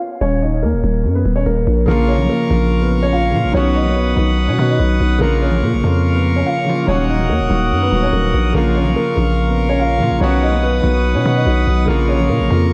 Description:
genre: hip hop.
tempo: 144 BPM.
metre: 4/4.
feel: half-time.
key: Bb phrygian.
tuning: A4 = 440 Hz.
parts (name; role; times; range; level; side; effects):
dark concert grand piano; melody; 0.2-12.7 s; Bb3 to F5; -22 LUFS; equal; low-pass filter, diffuse ambient delay.
growling 808-style bass; bass; 0.2-12.7 s; Eb1 to B2; -19 LUFS; equal; none.
felt-muted upright piano; accompaniment; 1.9-12.7 s; Db3 to F#4; -22 LUFS; equal; low-pass filter.
pipe organ, trumpet; sustained chords; 1.9-12.7 s; Bb4 to D#6; -25 LUFS; equal; none.
room: moderate lush hall reverb, RT60 2.7 s.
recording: dreamy mix soaked in reverb.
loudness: -16 LUFS.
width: mono.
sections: 0.0-12.7 A section.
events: break 0.0-1.9.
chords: 0.2 Eb5; 1.9 Bbm; 3.5 B; 5.2 Bbm; 6.9 Ebm; 8.5 Bbm; 10.2 B; 11.9 Bbm.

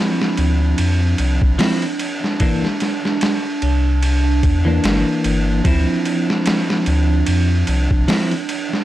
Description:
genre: trip hop.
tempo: 74 BPM.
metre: 4/4.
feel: swing 57% on 16ths.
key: D minor.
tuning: A4 = 439 Hz.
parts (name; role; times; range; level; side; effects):
clean electric guitar; accompaniment; 0.0-8.3 s; E3 to E4; -21 LUFS; left 1 dB; harmonic tremolo, vintage 12-bit sampler grit, low-pass filter, tape echo.
warbly tape-like pad; sustained chords; 0.2-8.8 s; D4; -24 LUFS; right 4 dB; chorus, built-in reverb.
trip hop sampler-style drum kit; drums; 0.2-8.8 s; hi-hat, kick drum, ride cymbal, snare drum; -20 LUFS; equal; none.
warm sub bass; bass; 0.4-8.1 s; G1 to F2; -16 LUFS; equal; tube saturation.
room: digital ambience.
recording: dry, gritty hardware recording.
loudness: -15 LUFS.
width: side -14 dB against mid.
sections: 0.0-8.8 A section.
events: none.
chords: 0.0 Dm7; 2.4 C7; 5.6 Dm7.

